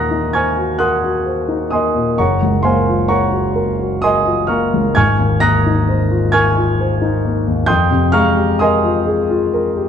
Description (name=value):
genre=classical, impressionist solo piano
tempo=66 BPM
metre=3/4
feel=rubato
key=unclear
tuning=A4 = 440 Hz
part: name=dark concert grand piano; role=solo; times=0.0-9.9 s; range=Gb1 to Bb6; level=-13 LUFS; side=equal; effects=none
room=moderate concert hall reverb, RT60 2.0 s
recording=dark, warm production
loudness=-13 LUFS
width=side -8 dB against mid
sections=0.0-9.9 A section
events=none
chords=0.0 Ebm6; 2.2 Gbmaj7; 5.0 Ab69; 7.7 Fm11